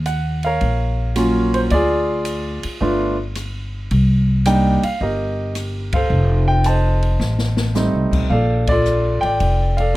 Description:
jazz piano trio; 109 BPM; 4/4; swing 69% on 8ths; Bb major; A4 = 440 Hz
upright bass; bass; 0.0-10.0 s; F1 to Eb2; -18 LUFS; equal
warm baby grand piano; melody; 0.1-10.0 s; Gb3 to A5; -19 LUFS; right 1 dB
open jazz drum kit; drums; 0.1-9.9 s; crash cymbal, hi-hat, kick drum, ride cymbal, rim click, snare drum; -27 LUFS; left 1 dB
light reverb; -16 LUFS; side -17 dB against mid
0.0-8.3 A section; 8.3-10.0 B section
band accent 5.8, 8.6; drum fill 7.2-7.8
0.0 Ebm9; 1.7 Ddim; 2.8 G7; 3.9 Cm7; 6.1 F9; 8.3 Bbmaj7

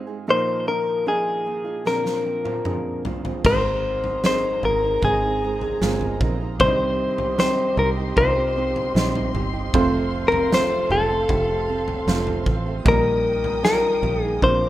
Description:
pop ballad; 76 BPM; 4/4; straight; A4 = 440 Hz
clear upright piano; accompaniment; 0.0-14.7 s; Ab2 to C5; -28 LUFS; right 3 dB
nylon-string guitar; arpeggios; 0.0-14.7 s; F2 to Bb4; -30 LUFS; right 6 dB
direct-recorded clean electric guitar; melody; 0.3-14.7 s; Ab4 to C5; -21 LUFS; left 2 dB; spring reverb
huge arena drum kit; drums; 1.9-14.6 s; crash cymbal, kick drum, snare drum, toms; -26 LUFS; equal
warm studio string section; sustained chords; 3.4-14.7 s; G4 to Eb6; -34 LUFS; right 1 dB
fingered electric bass; bass; 3.4-14.7 s; F1 to C2; -27 LUFS; right 1 dB
moderate small room reverb, RT60 0.6 s; rough home demo mix; -19 LUFS; side -14 dB against mid
0.0-3.4 A section; 3.4-14.7 B section
drum fill 1.9-3.4
0.3 Bbsus4; 1.9 Bbadd9; 3.4 Abadd9; 6.6 Cm; 9.7 F; 12.9 Eb/Bb

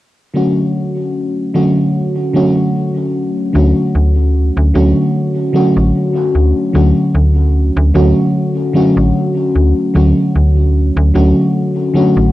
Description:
vaporwave; 75 BPM; 4/4; swing 54% on 16ths; D major; A4 = 440 Hz
mellow FM electric piano; accompaniment; 0.3-12.3 s; D3 to F#4; -12 LUFS; equal; wide subtle chorus, tape echo
slap-like FM bass; bass; 3.5-12.3 s; A1 to D2; -11 LUFS; equal
light reverb; dry, gritty hardware recording, cassette tape; -11 LUFS; side -16 dB against mid
0.3-6.7 A section; 6.7-12.3 B section
0.3 Dmaj7

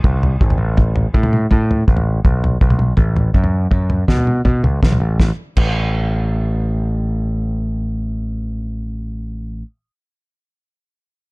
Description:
indie rock; 162 BPM; 4/4; straight; A4 = 440 Hz
growling picked electric bass; bass; 0.0-9.6 s; G#1 to B2; -17 LUFS; equal; overdrive
cloth-damped thuddy drum kit; drums; 0.0-5.7 s; crash cymbal, kick drum, snare drum, toms; -16 LUFS; equal
little or no reverb; dark, warm production; -14 LUFS; side -30 dB against mid
0.0-5.2 A section; 5.2-8.2 B section

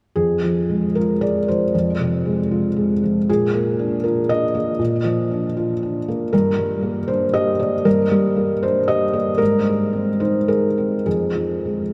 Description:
neoclassical minimalist piano; 116 BPM; 3/4; rubato; F dorian; A4 = 437 Hz
felt-muted upright piano; solo; 0.2-11.9 s; F2 to Eb5; -20 LUFS; equal
wet cathedral reverb, RT60 5.6 s; recorded in a church or concert hall; -20 LUFS; mono
0.2-11.9 A section
0.2 Fm; 3.3 Bb; 6.3 Gm; 9.4 Ab; 11.1 Fm

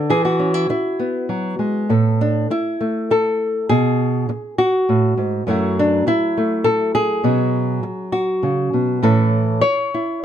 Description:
folk, solo fingerstyle acoustic guitar; 101 BPM; 3/4; straight; A4 = 444 Hz
nylon-string guitar; solo; 0.0-10.2 s; F#2 to C#5; -16 LUFS; equal
little or no reverb; close, detailed microphones; -16 LUFS; side -10 dB against mid
0.0-1.9 A section; 1.9-10.2 B section
0.1 E; 1.9 N.C.; 3.7 B5; 5.5 F#m7; 7.2 Bsus2; 9.0 A

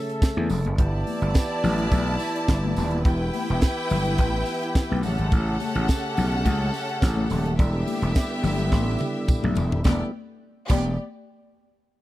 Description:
disco; 106 BPM; 4/4; straight; E dorian; A4 = 440 Hz
clear studio string section; second line; 0.0-11.0 s; B3 to A5; -29 LUFS; equal
percussive tonewheel organ; sustained chords; 0.0-10.1 s; C#3 to A4; -31 LUFS; right 1 dB; slow rotary speaker
tight funk drum kit; drums; 0.1-10.8 s; crash cymbal, hi-hat, kick drum, snare drum, toms; -21 LUFS; equal
congas; percussion; 0.2-11.0 s; -32 LUFS; left 6 dB
tambourine; percussion; 0.2-11.0 s; -44 LUFS; right 7 dB
gritty slap bass; bass; 0.4-11.0 s; D#1 to E2; -24 LUFS; equal; overdrive
studio ambience; dry, close 1970s-style studio recording; -21 LUFS; side -16 dB against mid
0.0-9.8 A section; 9.8-12.0 B section
drum fill 8.7-9.8
0.0 A; 0.8 G6; 3.1 Em; 5.0 A7; 7.6 Em7

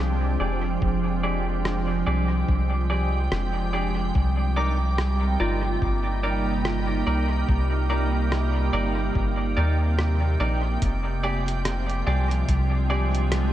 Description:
ambient dub; 72 BPM; 4/4; swing 59% on 16ths; F dorian; A4 = 439 Hz
soft additive organ-like pad; sustained chords; 0.0-13.5 s; C3 to G5; -28 LUFS; right 2 dB; ensemble chorus, built-in reverb
soft synth bell; arpeggios; 0.0-10.8 s; F4 to D6; -36 LUFS; left 1 dB; chorus, low-pass filter, tape echo
soft dub sub bass; bass; 0.0-13.5 s; F1 to Eb2; -24 LUFS; equal
semi-hollow electric guitar; stabs; 0.4-13.2 s; Eb4 to D5; -31 LUFS; equal; vintage 12-bit sampler grit, low-pass filter, dub echo
electronic kick drum; drums; 0.8-12.7 s; -26 LUFS; equal
lo-fi sampler-style drum kit; drums; 1.7-13.5 s; hi-hat, rim click; -35 LUFS; equal; dub echo
moderate lush hall reverb, RT60 3.4 s; dreamy mix soaked in reverb; -22 LUFS; side -12 dB against mid
0.0-13.5 A section
filter sweep on synth bell 0.0-13.5
0.0 Fm69; 4.2 Cm7; 10.8 Fm69

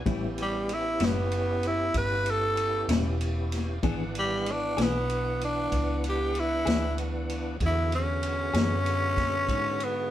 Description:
slow blues; 64 BPM (dotted quarters); 12/8; straight; A4 = 440 Hz
tonewheel organ; sustained chords; 0.0-10.1 s; D3 to F#5; -35 LUFS; equal; overdrive, chorus vibrato, slow rotary speaker
vintage muted fingered electric bass; bass; 0.0-10.1 s; E1 to G#2; -31 LUFS; equal
clean electric guitar; accompaniment; 0.1-8.7 s; A2 to G#4; -31 LUFS; left 4 dB; harmonic tremolo
vintage drum kit; drums; 0.1-9.9 s; kick drum, ride cymbal, snare drum; -33 LUFS; left 1 dB
growling tenor saxophone; melody; 0.4-10.1 s; G3 to B4; -28 LUFS; equal
light reverb; band playing live in one room; -25 LUFS; side -12 dB against mid
0.0-10.1 A section
tenor saxophone solo 0.0-10.1
0.1 A7; 3.8 E7

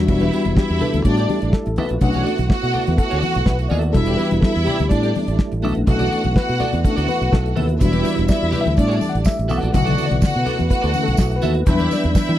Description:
disco; 124 BPM; 4/4; straight; B minor; A4 = 441 Hz
clear studio string section; second line; 0.0-12.4 s; D4 to F#5; -24 LUFS; right 1 dB
mellow reed electric piano; accompaniment; 0.0-12.4 s; C#3 to F#5; -23 LUFS; left 5 dB; fast tremolo
mellow tonewheel organ; sustained chords; 0.0-12.4 s; E3 to G5; -26 LUFS; right 3 dB; chorus vibrato, slow rotary speaker
fingered electric bass; bass; 0.0-12.4 s; E1 to E3; -21 LUFS; equal
clean electric guitar; accompaniment; 0.1-12.3 s; D4 to E5; -28 LUFS; right 5 dB; analog chorus
damped 70s drum kit; drums; 0.1-12.4 s; crash cymbal, hi-hat, kick drum, snare drum; -17 LUFS; equal
congas; percussion; 0.1-12.3 s; -27 LUFS; left 5 dB
tambourine; percussion; 7.8-12.3 s; -40 LUFS; right 24 dB
little or no reverb; dry, close 1970s-style studio recording; -16 LUFS; side -12 dB against mid
0.1-12.4 A section
reed electric piano solo 0.1-12.4
0.1 Em7; 1.1 A7sus4; 1.8 Bm7; 3.9 Em7; 4.9 A7sus4; 5.6 Bm7; 7.8 Em7; 8.8 A7sus4; 9.5 Bm7; 11.7 Em7

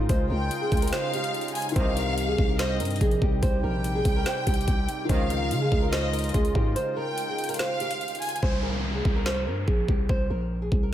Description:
hip hop, trap; 144 BPM; 4/4; half-time; C phrygian; A4 = 440 Hz
flamenco guitar; melody; 0.0-10.9 s; G4 to C5; -31 LUFS; right 2 dB; tape echo
dark concert grand piano; accompaniment; 0.0-8.4 s; Eb3 to G4; -36 LUFS; left 4 dB; wide subtle chorus
sweeping resonant pad; sustained chords; 0.0-8.4 s; C3 to G4; -34 LUFS; right 1 dB; wide subtle chorus
growling 808-style bass; bass; 0.0-10.9 s; Bb1 to Db3; -28 LUFS; equal
trap drum kit; drums; 0.1-10.8 s; hi-hat, kick drum, snare drum; -26 LUFS; equal
warm studio violin section; second line; 0.3-8.4 s; Eb5 to Ab5; -32 LUFS; left 1 dB; tape echo
warm brass ensemble; stabs; 1.8-2.2, 5.1-5.5 s; F2 to Eb3; -38 LUFS; right 2 dB; tape echo
downlifter; sound effects; 8.4-10.9 s; -35 LUFS; equal
light reverb; -23 LUFS; side -11 dB against mid
0.0-8.4 A section; 8.4-10.9 B section
break 0.9-1.8, 6.8-8.4; hi-hats muted 8.4-10.9
0.0 Dbadd9; 1.8 Cm; 5.1 Dbadd9; 8.4 C5

